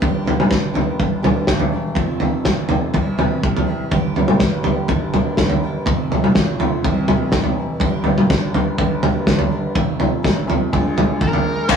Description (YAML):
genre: quiet-loud alternative rock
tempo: 123 BPM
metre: 4/4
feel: straight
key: G dorian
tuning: A4 = 436 Hz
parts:
  - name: picked plugged-in steel-string acoustic guitar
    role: arpeggios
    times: 0.0-11.8 s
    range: F2 to G4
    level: -26 LUFS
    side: right 4 dB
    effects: none
  - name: warm baby grand piano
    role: bass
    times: 0.0-11.8 s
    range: E1 to Eb2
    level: -25 LUFS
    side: left 3 dB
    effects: none
  - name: loose indie drum kit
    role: drums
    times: 0.0-11.8 s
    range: crash cymbal, kick drum, snare drum, toms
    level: -17 LUFS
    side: equal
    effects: none
  - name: fuzz lead guitar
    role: melody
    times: 11.2-11.8 s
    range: Bb4 to C5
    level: -22 LUFS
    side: equal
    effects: distortion
  - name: heavy high-gain guitar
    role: riff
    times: 11.7-11.8 s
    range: Eb3 to Eb4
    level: -14 LUFS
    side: left 6 dB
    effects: distortion
room: light reverb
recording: rough rehearsal-room recording, warm saturation, small room ambience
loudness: -16 LUFS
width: side -7 dB against mid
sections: 0.0-11.7 A section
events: none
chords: 0.0 Gm; 2.0 F; 3.0 C; 3.9 Gm; 5.9 F; 6.8 C; 7.8 Gm; 9.8 F; 10.7 Bb7